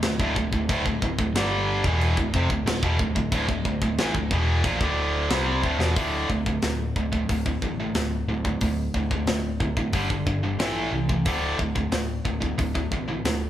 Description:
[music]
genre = heavy metal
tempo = 91 BPM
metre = 4/4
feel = straight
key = unclear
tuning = A4 = 438 Hz
[part]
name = tight distorted guitar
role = riff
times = 0.0-13.5 s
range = D2 to C4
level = -25 LUFS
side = equal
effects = distortion
[part]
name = overdriven picked electric bass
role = bass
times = 0.0-13.5 s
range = D1 to C2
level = -28 LUFS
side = equal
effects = none
[part]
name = tight metal drum kit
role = drums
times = 0.0-13.4 s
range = china cymbal, hi-hat, kick drum, snare drum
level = -28 LUFS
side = equal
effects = none
[sound]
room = moderate large studio reverb, RT60 1.4 s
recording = band playing live in one room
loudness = -22 LUFS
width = side -12 dB against mid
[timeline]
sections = 0.0-6.0 A section; 6.0-13.5 B section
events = drum fill 5.6-6.0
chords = 0.0 D5; 9.9 G5; 10.6 A5; 11.3 D5

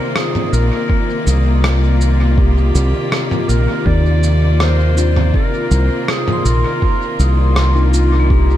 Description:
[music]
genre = ambient dub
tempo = 81 BPM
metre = 4/4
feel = straight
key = C minor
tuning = A4 = 440 Hz
[part]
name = mellow clarinet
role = melody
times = 0.0-8.6 s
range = F4 to D5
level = -23 LUFS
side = left 2 dB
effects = ping-pong delay
[part]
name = clear studio string section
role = sustained chords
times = 0.0-8.6 s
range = C3 to D5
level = -21 LUFS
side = left 1 dB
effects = none
[part]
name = vibraphone with hard mallets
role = arpeggios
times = 0.0-8.6 s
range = Bb3 to C6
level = -26 LUFS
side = left 2 dB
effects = ping-pong delay
[part]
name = lo-fi sampler-style drum kit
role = drums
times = 0.2-8.1 s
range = rim click, shaker, toms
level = -22 LUFS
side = equal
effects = dub echo
[part]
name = fingered electric bass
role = bass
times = 0.5-8.6 s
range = Bb1 to Eb2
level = -12 LUFS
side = equal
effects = none
[part]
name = electronic kick drum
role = drums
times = 0.9-8.5 s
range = none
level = -16 LUFS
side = equal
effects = none
[part]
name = mellow tine electric piano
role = stabs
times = 5.0-8.6 s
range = Bb3 to F4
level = -24 LUFS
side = left 3 dB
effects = lush chorus, dub echo
[sound]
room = light reverb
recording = none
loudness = -12 LUFS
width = side -12 dB against mid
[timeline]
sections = 0.0-8.6 A section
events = none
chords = 0.0 Cm11

